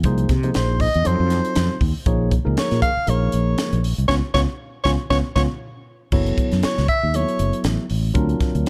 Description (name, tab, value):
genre	electric jazz fusion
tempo	118 BPM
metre	4/4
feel	swing 55% on 16ths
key	Bb minor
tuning	A4 = 440 Hz
part	fretless electric bass	bass	0.0-8.6 s	F#1 to C3	-23 LUFS	equal	subtle chorus
part	crisp fusion drum kit	drums	0.0-8.7 s	crash cymbal, hi-hat, kick drum, snare drum	-26 LUFS	equal	none
part	barky tine electric piano	accompaniment	0.1-8.7 s	F3 to E5	-27 LUFS	equal	phaser
part	clear soprano saxophone	melody	0.6-7.7 s	C5 to F5	-25 LUFS	equal	none
room	small room ambience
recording	dark, warm production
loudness	-20 LUFS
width	mono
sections	0.0-6.1 A section; 6.1-8.7 A section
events	soprano saxophone solo 0.0-8.7; band accent 4.1-6.1; drum fill 5.1-6.1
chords	0.0 Bb9sus4; 1.1 F7b9; 2.1 Bbm7; 4.1 Db7; 6.1 F#m7; 8.2 D7alt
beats	| 0.04 0.55 1.05 1.56 | 2.07 2.57 3.08 3.59 | 4.09 4.60 5.11 5.61 | 6.12 6.63 7.14 7.64 | 8.15 8.66